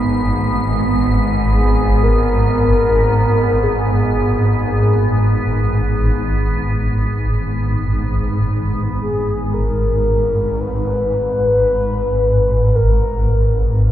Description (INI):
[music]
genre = dark ambient drone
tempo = free time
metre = none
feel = none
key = G# minor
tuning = A4 = 439 Hz
[part]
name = swarming drone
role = drone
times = 0.0-13.9 s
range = G#1 to G#2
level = -16 LUFS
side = equal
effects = built-in reverb
[part]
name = icy glass pad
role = texture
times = 0.0-8.5 s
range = B3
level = -23 LUFS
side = right 2 dB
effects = chorus, built-in reverb
[part]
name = mellow horn-like synth lead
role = melody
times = 1.5-13.8 s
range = G#4 to B4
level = -20 LUFS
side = left 1 dB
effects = chorus, diffuse ambient delay
[sound]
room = wet cathedral reverb, RT60 6.9 s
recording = in a vast, echoing space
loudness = -14 LUFS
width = side -12 dB against mid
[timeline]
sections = 0.0-8.5 A section; 8.5-13.9 B section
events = none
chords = 0.0 G#madd9; 8.5 N.C.